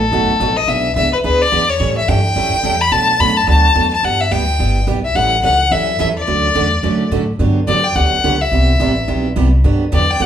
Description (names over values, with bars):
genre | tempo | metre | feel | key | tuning
country, western swing | 214 BPM | 4/4 | swing 61% on 8ths | unclear | A4 = 441 Hz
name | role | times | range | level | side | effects
clear fiddle | melody | 0.0-10.3 s | A4 to B5 | -15 LUFS | left 3 dB | none
upright bass | bass | 0.0-10.3 s | F#1 to B2 | -17 LUFS | equal | none
picked steel-string acoustic guitar | accompaniment | 0.1-10.3 s | B2 to A4 | -19 LUFS | right 5 dB | none
room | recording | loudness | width
wet large studio reverb, RT60 0.8 s | band playing live in one room | -12 LUFS | side -9 dB against mid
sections
0.0-7.4 A section; 7.4-10.3 B section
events
none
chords
0.0 B7; 0.7 E7; 1.8 A7; 2.9 Bm7; 4.0 G6; 5.2 A7; 6.3 Dmaj7; 7.4 Gmaj7; 8.5 Cmaj7; 9.6 Gmaj7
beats
0.12 0.40 | 0.68 0.96 1.24 1.52 | 1.80 2.08 2.35 2.63 | 2.91 3.19 3.47 3.75 | 4.03 4.31 4.59 4.87 | 5.15 5.43 5.71 6.00 | 6.28 6.56 6.84 7.12 | 7.40 7.68 7.96 8.24 | 8.52 8.80 9.08 9.36 | 9.64 9.92 10.20